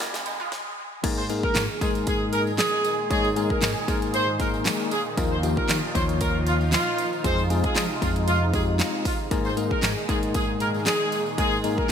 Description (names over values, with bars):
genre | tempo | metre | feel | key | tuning
dance-pop | 116 BPM | 4/4 | straight | Ab major | A4 = 441 Hz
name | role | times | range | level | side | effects
bell-like tine electric piano | accompaniment | 0.0-11.9 s | F3 to Db5 | -29 LUFS | left 7 dB | medium stereo tremolo, sidechain pumping
filtered supersaw swell | sustained chords | 0.0-11.9 s | Bb2 to Ab4 | -31 LUFS | right 2 dB | lush chorus, sidechain pumping
wide unison pluck | arpeggios | 0.0-0.5 s | F3 to F4 | -39 LUFS | right 4 dB | lush chorus, sidechain pumping, ping-pong delay
vintage slap bass | bass | 0.0-11.8 s | Eb2 to F3 | -28 LUFS | equal | sidechain pumping
pop drum kit | drums | 0.0-11.9 s | crash cymbal, handclaps, hi-hat, kick drum, snare drum | -27 LUFS | right 1 dB | gated reverb
tambourine | percussion | 0.0-11.8 s | none | -39 LUFS | right 9 dB | none
riser | sound effects | 0.0-0.5 s | none | -35 LUFS | equal | none
warm horn section | melody | 1.2-11.9 s | F4 to C5 | -27 LUFS | right 1 dB | sidechain pumping
room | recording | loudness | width
moderate lush hall reverb, RT60 2.7 s | bright 1980s-style digital production, high-pass filter | -22 LUFS | side -8 dB against mid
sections
0.0-1.0 A section; 1.0-11.9 B section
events
build-up 0.0-1.0; drum fill 0.0-0.5; riser 0.0-1.0; filter sweep 0.0-1.0; stop 0.5-1.0; drop 1.0-11.9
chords
0.0 Fm7; 1.0 Absus2; 5.2 Ebsus2; 7.2 Fm7; 9.3 Absus2